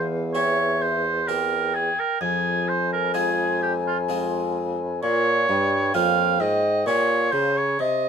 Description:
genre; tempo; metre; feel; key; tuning
classical, baroque-style sonata movement with continuo; 64 BPM; 3/4; rubato; F minor; A4 = 441 Hz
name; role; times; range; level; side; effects
baroque flute; melody; 0.0-8.1 s; Eb5 to Ab5; -30 LUFS; left 6 dB; none
warm oboe; second line; 0.0-8.1 s; F4 to F5; -22 LUFS; right 3 dB; none
harpsichord; accompaniment; 0.0-8.1 s; E2 to G4; -30 LUFS; left 1 dB; none
mellow bassoon; bass; 0.0-8.1 s; E2 to Db3; -26 LUFS; equal; none
room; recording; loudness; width
little or no reverb; close, detailed microphones; -20 LUFS; side -7 dB against mid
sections
0.0-8.1 A section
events
none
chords
0.0 C/E; 2.2 Fm; 5.0 Bbm; 6.9 Gdim/Bb

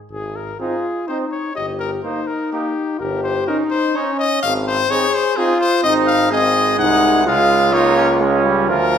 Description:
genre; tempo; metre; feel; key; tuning
classical, brass quintet; 126 BPM; 3/4; rubato; Ab major; A4 = 439 Hz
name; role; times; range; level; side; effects
warm trumpet; melody; 0.1-9.0 s; G4 to Gb5; -19 LUFS; left 3 dB; none
clear bass trombone; bass; 0.1-9.0 s; G1 to D2; -22 LUFS; right 1 dB; none
warm trumpet; second line; 0.6-9.0 s; Db4 to Ab4; -23 LUFS; right 6 dB; none
bright trombone; accompaniment; 0.6-9.0 s; F3 to Db4; -23 LUFS; right 4 dB; none
clear French horn; accompaniment; 0.6-8.9 s; C4 to Ab4; -20 LUFS; left 2 dB; none
room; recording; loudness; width
wet recital hall reverb, RT60 1.3 s; recorded in a church or concert hall; -15 LUFS; side -8 dB against mid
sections
0.1-9.0 A section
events
none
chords
0.1 Ab; 1.6 Eb/G; 3.0 Eb7/G; 4.4 Ab; 7.3 Db

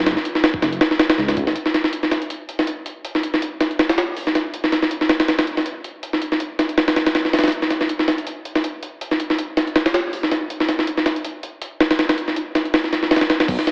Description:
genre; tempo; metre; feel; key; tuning
drum and bass, jungle; 161 BPM; 4/4; swing 55% on 16ths; unclear; A4 = 442 Hz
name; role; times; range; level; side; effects
dark detuned saw bass; bass; 0.0-1.5, 13.5-13.6 s; F#1 to C#2; -27 LUFS; equal; none
jungle sampler-style drum kit; drums; 0.1-13.7 s; crash cymbal, hi-hat, kick drum, snare drum; -20 LUFS; equal; high-pass filter on snare, high-pass filter on hats, high-pass filter on kick, high-pass filter on cymbals, high-pass filter on room
room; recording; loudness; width
moderate lush hall reverb, RT60 1.7 s; heavily compressed radio sound, vinyl crackle, AM radio sound; -20 LUFS; mono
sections
0.0-1.6 A section; 1.6-13.5 B section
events
none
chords
none

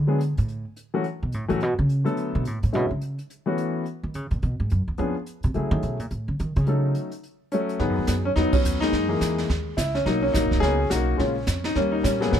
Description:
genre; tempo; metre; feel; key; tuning
jazz piano trio; 213 BPM; 4/4; swing 60% on 8ths; G# minor from 7.8 s; A4 = 439 Hz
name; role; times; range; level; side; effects
upright bass; bass; 0.0-12.4 s; D#1 to D#3; -24 LUFS; right 1 dB; none
warm baby grand piano; melody; 0.1-12.4 s; C#3 to A4; -24 LUFS; left 2 dB; none
jazz brush drum kit; drums; 0.2-12.4 s; brushed snare drum, hi-hat, kick drum, ride cymbal, snare drum; -29 LUFS; right 2 dB; none
room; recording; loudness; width
little or no reverb; close, detailed microphones; -22 LUFS; side -9 dB against mid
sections
0.0-7.8 A section; 7.8-12.4 B section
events
upright bass solo 0.0-7.8; band accent 8.5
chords
0.5 A5; 1.0 F#m; 2.2 Bm7; 2.7 E13; 3.3 A69; 4.4 Eadd9; 5.0 C#7b9; 5.5 F#m9; 6.7 D#m7b5; 7.2 F#m; 7.8 G#m7; 8.9 F#13; 10.1 Bmaj9; 11.2 A#m7; 11.8 D#7

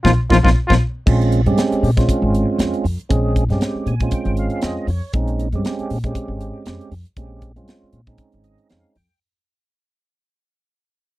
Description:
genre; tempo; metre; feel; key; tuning
electric jazz fusion; 118 BPM; 4/4; swing 55% on 16ths; Bb dorian; A4 = 442 Hz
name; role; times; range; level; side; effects
breathy trumpet; melody; 0.0-0.7 s; F4; -18 LUFS; equal; slapback echo
tonewheel organ; accompaniment; 0.0-9.2 s; Ab3 to Ab5; -22 LUFS; right 3 dB; slow rotary speaker, overdrive, chorus vibrato
crisp fusion drum kit; drums; 0.0-9.1 s; crash cymbal, hi-hat, kick drum, snare drum; -19 LUFS; equal; none
clear bass clarinet; second line; 0.1-0.8 s; F3; -19 LUFS; left 8 dB; none
upright bass; bass; 0.1-9.1 s; Ab1 to Bb2; -19 LUFS; equal; none
room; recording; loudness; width
little or no reverb; dry, close 1970s-style studio recording; -16 LUFS; side -17 dB against mid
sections
0.0-1.1 A section; 1.1-9.2 B section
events
band accent 0.0-1.1; drum fill 0.0-1.1; fade-out 1.1-9.2; tonewheel organ fill 3.6-5.1, 8.2-9.2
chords
0.0 Bbsus4; 1.1 Bbm9

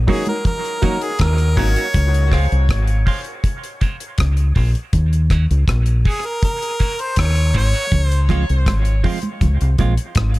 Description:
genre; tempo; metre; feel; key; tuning
dub reggae; 80 BPM; 4/4; straight; Eb dorian; A4 = 442 Hz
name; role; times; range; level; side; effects
deep dub fingered electric bass; bass; 0.0-10.4 s; Ab1 to Eb2; -15 LUFS; equal; none
clear harmonica; melody; 0.1-8.3 s; Ab4 to Db5; -25 LUFS; equal; dub echo
clean electric guitar; accompaniment; 0.1-9.9 s; F3 to Gb4; -27 LUFS; right 6 dB; high-pass filter, dub echo
dark grand piano; stabs; 0.1-5.5 s; Db4 to Db5; -30 LUFS; left 3 dB; high-pass filter, dub echo
deep reggae drum kit; drums; 0.1-10.4 s; hi-hat, kick drum, rim click; -19 LUFS; equal; none
congas; percussion; 0.1-10.3 s; none; -29 LUFS; right 4 dB; none
room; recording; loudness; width
small room ambience; echo-heavy mix; -15 LUFS; side -19 dB against mid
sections
0.0-10.4 A section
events
filter sweep 0.0-7.9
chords
0.0 Ebm7; 1.9 Dbmaj7; 4.9 Ebm7; 7.9 Dbmaj7

